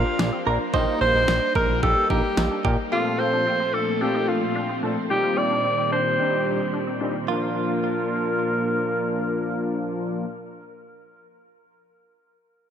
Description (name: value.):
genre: synth-pop.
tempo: 110 BPM.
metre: 4/4.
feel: straight.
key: Bb major.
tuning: A4 = 440 Hz.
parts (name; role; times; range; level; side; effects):
bright alto saxophone; melody; 0.0-10.3 s; Eb4 to D5-20c; -24 LUFS; equal; low-pass filter, tape echo.
direct-recorded clean electric guitar; second line; 0.0-2.8, 7.3-8.9 s; F4 to C5; -30 LUFS; right 8 dB; warbly pitch drift, tape echo.
analog synth brass; accompaniment; 0.0-10.3 s; Bb2 to Bb4; -28 LUFS; left 2 dB; chorus, low-pass filter.
string machine, violins; sustained chords; 0.0-10.3 s; Bb2 to F4; -29 LUFS; equal; ensemble chorus, low-pass filter.
resonant blip pluck; arpeggios; 0.0-10.4 s; Bb3 to Bb4; -33 LUFS; left 2 dB; phaser, low-pass filter, tape echo.
fat analog bass; bass; 0.0-2.8 s; Bb1 to Bb2; -25 LUFS; equal; none.
pop drum kit; drums; 0.2-2.8 s; kick drum, snare drum; -26 LUFS; equal; tape echo.
room: moderate plate reverb, RT60 2.1 s.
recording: echo-heavy mix.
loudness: -20 LUFS.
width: side -8 dB against mid.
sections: 0.0-7.3 A section; 7.3-11.6 B section.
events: none.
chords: 0.0 Bb; 0.7 Eb/Bb; 2.9 F/Bb; 5.1 Cm/Bb; 7.3 Bb.